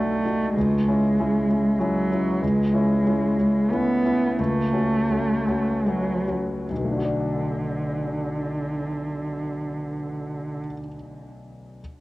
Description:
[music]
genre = neoclassical piano and strings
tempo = 70-97 BPM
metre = 3/4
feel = rubato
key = B dorian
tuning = A4 = 445 Hz
[part]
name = muted cello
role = second line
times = 0.0-10.6 s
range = D3 to B3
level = -23 LUFS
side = right 1 dB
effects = cassette tape, tape echo
[part]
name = clear grand piano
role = accompaniment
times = 0.0-11.8 s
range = B1 to D5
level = -27 LUFS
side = left 2 dB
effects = cassette tape
[sound]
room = light reverb, small room reverb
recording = home recording on cassette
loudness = -21 LUFS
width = side -19 dB against mid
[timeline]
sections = 0.0-6.7 A section; 6.7-11.8 B section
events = slowing down 1.5-6.7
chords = 0.0 Bm7; 0.6 C#m; 2.4 Amaj7/C#; 4.4 F#m/C#; 6.7 Bm7

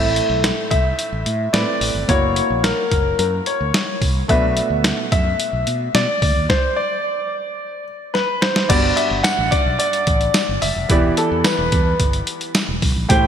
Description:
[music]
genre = 1980s-style pop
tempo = 109 BPM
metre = 4/4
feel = straight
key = E minor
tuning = A4 = 439 Hz
[part]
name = clear grand piano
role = melody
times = 0.0-13.3 s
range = A4 to G5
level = -20 LUFS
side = left 1 dB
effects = wide subtle chorus, digital delay
[part]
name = clear baby grand piano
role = accompaniment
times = 0.0-13.3 s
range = G2 to D5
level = -24 LUFS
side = right 1 dB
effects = none
[part]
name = mellow fretless electric bass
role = bass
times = 0.0-13.3 s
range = E1 to B2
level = -23 LUFS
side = equal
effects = none
[part]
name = boom bap sampler-style drum kit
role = drums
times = 0.2-13.2 s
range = crash cymbal, hi-hat, kick drum, snare drum, tambourine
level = -19 LUFS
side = equal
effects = none
[sound]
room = moderate lush hall reverb, RT60 2.7 s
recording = bright 1980s-style digital production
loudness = -16 LUFS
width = side -8 dB against mid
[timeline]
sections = 0.0-8.7 A section; 8.7-13.3 B section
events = stop 6.5-8.7; drum fill 8.1-8.7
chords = 0.0 Am; 2.1 F#7; 4.3 Bm7; 6.2 Cmadd9/D; 8.7 Gmaj7; 10.9 Em7

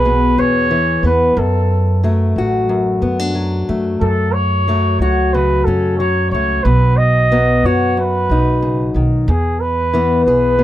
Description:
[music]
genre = acoustic folk duo or small band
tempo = 91 BPM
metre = 4/4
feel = straight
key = E major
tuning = A4 = 440 Hz
[part]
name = warm flugelhorn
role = melody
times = 0.0-10.6 s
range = G#4 to D#5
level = -18 LUFS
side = right 2 dB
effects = none
[part]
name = fingerpicked acoustic archtop guitar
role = accompaniment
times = 0.0-10.6 s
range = E2 to G#4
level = -17 LUFS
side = left 2 dB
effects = none
[part]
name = upright bass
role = bass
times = 0.0-10.6 s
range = A1 to F#2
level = -17 LUFS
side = right 1 dB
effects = none
[sound]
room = little or no reverb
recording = dry, close 1970s-style studio recording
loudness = -13 LUFS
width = side -13 dB against mid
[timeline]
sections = 0.0-10.6 A section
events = none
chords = 0.0 E; 1.4 D; 4.0 F#m; 6.6 B; 9.3 E

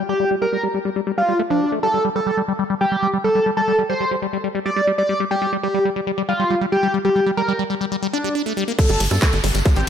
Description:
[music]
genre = psychedelic trance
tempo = 138 BPM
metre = 4/4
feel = straight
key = G minor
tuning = A4 = 439 Hz
[part]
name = liquid acid bass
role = riff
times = 0.0-9.8 s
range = F3 to D4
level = -23 LUFS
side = moving between left 5 dB and right 4 dB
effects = phaser, auto-pan, sidechain pumping, ping-pong delay
[part]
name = overdriven synth lead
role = melody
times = 0.1-9.9 s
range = D4 to D5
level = -20 LUFS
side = equal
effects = distortion, phaser, sidechain pumping, dub echo
[part]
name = drum and bass drum kit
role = drums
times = 8.8-9.9 s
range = bongos, crash cymbal, handclaps, hi-hat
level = -24 LUFS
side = right 2 dB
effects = overdrive, low-pass filter on hats, studio reverb, low-pass filter on cymbals, low-pass filter on perc, low-pass filter on snare
[part]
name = electronic kick drum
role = drums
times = 8.8-9.7 s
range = none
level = -16 LUFS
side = equal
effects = overdrive, studio reverb
[part]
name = tambourine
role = percussion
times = 8.8-9.8 s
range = none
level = -34 LUFS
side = right 4 dB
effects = none
[part]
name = downlifter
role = sound effects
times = 8.8-9.9 s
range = none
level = -27 LUFS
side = equal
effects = none
[part]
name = tight sequencer bass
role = bass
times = 8.9-9.8 s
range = G1 to G2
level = -20 LUFS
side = equal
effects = none
[part]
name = resonant blip pluck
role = second line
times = 9.8 s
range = C4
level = -30 LUFS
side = right 3 dB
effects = chorus, sidechain pumping, high-pass filter
[sound]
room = moderate lush hall reverb, RT60 2.0 s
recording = none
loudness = -17 LUFS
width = side -8 dB against mid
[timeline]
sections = 0.0-8.8 A section; 8.8-9.9 B section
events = filter sweep on acid bass 0.0-8.8; drop 8.8-9.9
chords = 0.0 G5

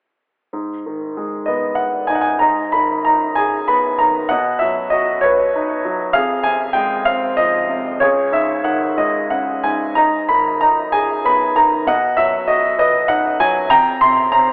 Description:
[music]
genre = classical, lyrical solo piano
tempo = 60-68 BPM (dotted quarters)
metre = 6/8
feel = rubato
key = G# minor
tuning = A4 = 440 Hz
[part]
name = clear baby grand piano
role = solo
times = 0.5-14.5 s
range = C#2 to C6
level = -14 LUFS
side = equal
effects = none
[sound]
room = wet spring reverb, RT60 1.1 s, small room ambience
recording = cassette tape, telephone sound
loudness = -14 LUFS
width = side -35 dB against mid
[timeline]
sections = 0.5-2.4 A section; 2.4-14.5 B section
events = none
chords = 0.5 G#m; 4.3 Badd9; 6.1 Fm; 8.0 C#sus2; 10.0 G#m; 11.9 B; 13.7 Fsus2

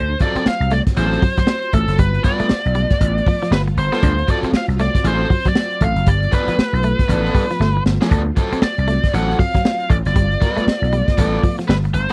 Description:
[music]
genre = funk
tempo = 118 BPM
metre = 4/4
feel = swing 60% on 16ths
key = unclear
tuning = A4 = 441 Hz
[part]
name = biting lead guitar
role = melody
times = 0.0-12.1 s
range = A4 to F#5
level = -24 LUFS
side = equal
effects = overdrive
[part]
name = phased string machine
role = sustained chords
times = 0.5-12.1 s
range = F#3 to E#4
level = -32 LUFS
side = equal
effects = none
[part]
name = clean electric guitar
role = riff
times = 0.0-12.1 s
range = F3 to D4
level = -26 LUFS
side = equal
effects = none
[part]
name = vintage slap bass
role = bass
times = 0.0-12.1 s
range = F#1 to D2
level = -21 LUFS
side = equal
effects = none
[part]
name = raw garage guitar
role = accompaniment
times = 0.2-12.1 s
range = F3 to B4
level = -25 LUFS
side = equal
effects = overdrive
[part]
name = crunchy breakbeat drum kit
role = drums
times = 0.2-12.1 s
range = hi-hat, kick drum, snare drum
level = -20 LUFS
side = equal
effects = none
[sound]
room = little or no reverb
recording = dry, close 1970s-style studio recording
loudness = -17 LUFS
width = mono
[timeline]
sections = 0.0-12.1 A section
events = drum fill 7.6-8.1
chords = 0.0 D7#9 (rootless); 2.0 G9; 4.0 D7#9; 6.1 G9; 8.1 D7#9; 10.2 G9

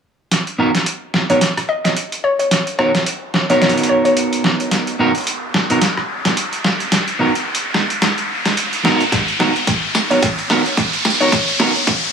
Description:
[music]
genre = glitch hop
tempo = 109 BPM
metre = 4/4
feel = swing 57% on 16ths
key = unclear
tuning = A4 = 441 Hz
[part]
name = boom bap sampler-style drum kit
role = drums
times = 0.3-12.0 s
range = hi-hat, rim click, snare drum, tambourine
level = -18 LUFS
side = right 1 dB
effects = overdrive
[part]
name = riser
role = sound effects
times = 1.7-12.1 s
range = none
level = -21 LUFS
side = equal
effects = none
[part]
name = electric guitar at the edge of break-up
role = stabs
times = 0.6-11.7 s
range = B3 to A#4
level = -19 LUFS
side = right 2 dB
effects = sidechain pumping, digital delay
[part]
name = woody wave-folded pluck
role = melody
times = 1.3-4.1, 10.1-11.3 s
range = C#5 to D#5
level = -18 LUFS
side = left 2 dB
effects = chorus, cassette tape, digital delay
[part]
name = electronic kick drum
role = drums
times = 9.1-12.0 s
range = none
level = -23 LUFS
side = equal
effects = none
[sound]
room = moderate plate reverb, RT60 1.4 s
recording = high-pass filter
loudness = -14 LUFS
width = side -6 dB against mid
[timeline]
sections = 0.3-12.1 A section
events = build-up 0.3-12.1; drum fill 0.3-12.1; filter sweep 0.3-12.1; riser 1.7-12.1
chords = 0.3 Bmaj7

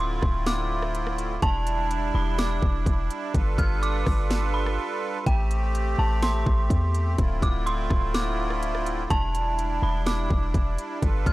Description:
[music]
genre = hip hop, atmospheric cloud-rap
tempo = 125 BPM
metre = 4/4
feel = half-time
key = unclear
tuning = A4 = 442 Hz
[part]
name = dark detuned synth bell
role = melody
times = 0.0-11.3 s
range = G5 to F6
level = -31 LUFS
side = right 1 dB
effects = chorus, analog delay
[part]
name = accordion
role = sustained chords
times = 0.0-11.3 s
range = D3 to B4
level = -30 LUFS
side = right 2 dB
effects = light tremolo tuning, sidechain pumping
[part]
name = warm 808-style bass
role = bass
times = 0.0-11.3 s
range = D1 to E2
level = -26 LUFS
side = equal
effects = none
[part]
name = trap drum kit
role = drums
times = 0.2-11.3 s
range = hi-hat, kick drum, rim click, snare drum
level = -26 LUFS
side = equal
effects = none
[sound]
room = digital ambience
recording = dry, gritty hardware recording, transformer saturation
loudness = -22 LUFS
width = side -18 dB against mid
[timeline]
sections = 0.0-11.3 A section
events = break 4.8-5.3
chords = 0.0 Dm7; 1.4 Em7; 3.3 G7; 5.3 Am7; 7.2 Dm7; 9.1 Em7

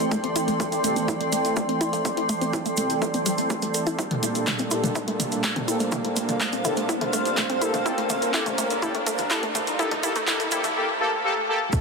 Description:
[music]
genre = melodic techno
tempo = 124 BPM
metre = 4/4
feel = straight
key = unclear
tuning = A4 = 441 Hz
[part]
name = warm analog pad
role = sustained chords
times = 0.0-11.8 s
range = Bb2 to Bb4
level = -30 LUFS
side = right 2 dB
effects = chorus, sidechain pumping
[part]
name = punchy analog drum machine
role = drums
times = 0.0-11.8 s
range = handclaps, hi-hat, toms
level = -30 LUFS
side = equal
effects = none
[part]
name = maracas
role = percussion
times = 0.0-11.8 s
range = none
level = -33 LUFS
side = right 6 dB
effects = none
[part]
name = riser, swell and sub drop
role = sound effects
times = 0.8-11.8 s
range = none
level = -34 LUFS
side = right 1 dB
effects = none
[part]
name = granular cloud pad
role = texture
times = 0.0-11.8 s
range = A4 to C6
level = -29 LUFS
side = equal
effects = built-in reverb, sidechain pumping
[part]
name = wide unison pluck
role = arpeggios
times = 0.1-11.8 s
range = G3 to A4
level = -29 LUFS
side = left 1 dB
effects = sidechain pumping, ping-pong delay
[part]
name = electronic kick drum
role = drums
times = 0.1-11.8 s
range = none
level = -30 LUFS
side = equal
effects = high-pass filter on kick, high-pass filter on room
[part]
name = analog synth brass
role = stabs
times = 0.8-11.6 s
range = Bb3 to A4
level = -29 LUFS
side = left 2 dB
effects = chorus, sidechain pumping, ping-pong delay
[sound]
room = moderate huge ambient reverb, RT60 4.9 s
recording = dense, heavily limited modern master, high-pass filter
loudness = -22 LUFS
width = side -4 dB against mid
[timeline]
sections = 0.0-11.7 A section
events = build-up 0.0-11.7; filter sweep on synth arpeggio sound 0.0-11.7; filter sweep on analog polysynth 0.0-11.7; filter sweep 0.0-11.7; riser 0.8-10.8; swell 10.8-11.7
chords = 0.0 Am7; 4.0 Gmadd9

